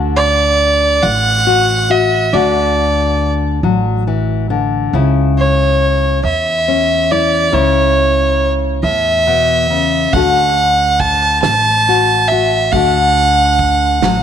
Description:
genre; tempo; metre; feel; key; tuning
acoustic folk duo or small band; 46 BPM (dotted quarters); 6/8; straight; D major; A4 = 435 Hz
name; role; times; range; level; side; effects
nylon-string guitar; accompaniment; 0.0-14.2 s; A2 to F#4; -17 LUFS; left 9 dB; none
upright bass; bass; 0.0-14.2 s; A1 to E2; -17 LUFS; right 2 dB; none
clear fiddle; melody; 0.2-14.2 s; C#5 to A5; -13 LUFS; right 2 dB; none
soft brush drum kit; drums; 10.1-14.2 s; hi-hat, kick drum, snare drum; -21 LUFS; right 7 dB; none
room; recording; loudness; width
moderate echo chamber reverb, RT60 2.2 s; 1960s-style stereo with parts hard left and right; -11 LUFS; side -8 dB against mid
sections
0.0-14.2 A section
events
none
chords
0.0 D; 4.9 A/C# (rootless); 10.1 D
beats
1.03 | 2.34 3.64 | 4.94 6.24 | 7.54 8.84 | 10.13 11.43 | 12.73 14.03

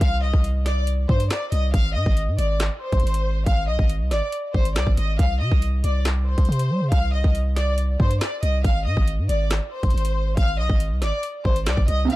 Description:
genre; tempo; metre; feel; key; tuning
hip hop, drill; 139 BPM; 4/4; half-time; unclear; A4 = 440 Hz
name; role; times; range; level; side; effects
rich studio violin section; melody; 0.0-12.2 s; C5 to F5; -27 LUFS; left 1 dB; tape echo
long sustained 808-style bass; bass; 0.0-12.1 s; Ab1 to G3; -22 LUFS; equal; none
drill drum kit; drums; 0.0-12.2 s; handclaps, hi-hat, kick drum, snare drum; -22 LUFS; equal; none
downlifter; sound effects; 0.0-1.7 s; none; barely audible; none; none
felt-muted upright piano; accompaniment; 12.1-12.2 s; C3 to Eb4; -19 LUFS; right 6 dB; none
room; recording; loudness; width
little or no reverb; dark, warm production; -19 LUFS; side -17 dB against mid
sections
0.0-12.2 A section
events
none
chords
0.0 C5; 1.7 Ab; 5.2 C5; 8.6 Ab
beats
| 0.01 0.44 0.88 1.31 | 1.74 2.17 2.60 3.03 | 3.46 3.90 4.33 4.76 | 5.19 5.62 6.05 6.49 | 6.92 7.35 7.78 8.21 | 8.64 9.08 9.51 9.94 | 10.37 10.80 11.23 11.67 | 12.10

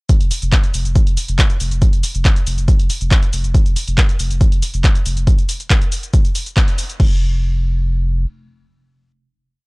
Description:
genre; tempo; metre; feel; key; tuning
driving peak-time techno; 139 BPM; 4/4; straight; unclear; A4 = 440 Hz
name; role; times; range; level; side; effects
electronic kick drum; drums; 0.1-7.1 s; none; -13 LUFS; equal; none
punchy analog drum machine; drums; 0.1-7.1 s; crash cymbal, handclaps, hi-hat, shaker; -22 LUFS; equal; sidechain pumping on hats, sidechain pumping on perc, sidechain pumping on cymbals
saturated sub bass; bass; 0.2-8.3 s; F1; -18 LUFS; equal; sidechain pumping, low-pass filter
room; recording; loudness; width
little or no reverb; dry, gritty hardware recording, cassette tape; -13 LUFS; side -28 dB against mid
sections
0.1-7.0 drop; 7.0-9.7 final note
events
drop 0.1-7.0; band accent 6.6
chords
none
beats
| 0.09 0.52 0.95 1.39 | 1.82 2.25 2.68 3.11 | 3.54 3.98 4.41 4.84 | 5.27 5.70 6.13 6.57 | 7.00 7.43 7.86

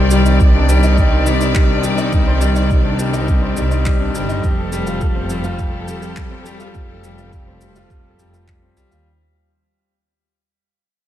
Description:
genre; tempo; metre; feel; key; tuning
piano and strings electronica; 104 BPM; 4/4; straight; unclear; A4 = 440 Hz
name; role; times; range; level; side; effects
dark chamber string section; sustained chords; 0.0-9.0 s; C3 to D5; -22 LUFS; left 1 dB; sidechain pumping
clear grand piano; riff; 0.0-9.1 s; G3 to C5; -20 LUFS; left 2 dB; ping-pong delay
warm studio double bass section; bass; 0.0-9.0 s; F1 to Eb2; -18 LUFS; equal; sidechain pumping
electronic shaker and handclaps; drums; 0.1-9.0 s; none; -31 LUFS; equal; none
electronic kick drum; drums; 0.4-8.6 s; none; -16 LUFS; right 1 dB; none
room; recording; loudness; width
light reverb, small room reverb; none; -13 LUFS; side -12 dB against mid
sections
0.0-9.1 A section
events
drop 0.0-9.1; fade-out 0.0-9.1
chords
0.0 Cmadd9; 4.4 Fadd9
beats
0.40 0.98 1.55 | 2.13 2.71 3.29 3.86 | 4.44 5.01 5.59 6.17 | 6.75 7.32 7.90 8.48

